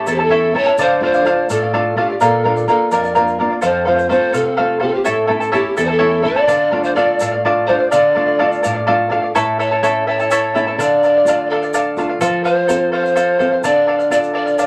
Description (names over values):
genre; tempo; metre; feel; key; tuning
andean folk, Andean ensemble; 84 BPM (dotted quarters); 6/8; straight; D minor; A4 = 440 Hz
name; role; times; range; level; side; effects
breathy mellow polished pan flute; melody; 0.0-14.7 s; G4 to D5; -19 LUFS; equal; none
mellow hollow polished pan flute; second line; 0.0-8.6, 14.1-14.7 s; G4 to F5; -26 LUFS; equal; none
charango; accompaniment; 0.0-14.7 s; E4 to A5; -19 LUFS; equal; none
nylon-string guitar; accompaniment; 0.0-14.7 s; E2 to D5; -24 LUFS; equal; none
egg shaker; percussion; 0.1-14.7 s; none; -38 LUFS; equal; none
room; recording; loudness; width
wet small room reverb, RT60 0.5 s; none; -15 LUFS; mono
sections
0.0-9.3 A section; 9.3-14.7 B section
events
nylon-string guitar fill 8.6-9.3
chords
0.0 A; 0.8 Dm; 2.2 Bb; 3.6 F; 5.1 A; 6.5 Dm; 9.3 A; 10.8 Dm; 12.2 F; 13.6 Dm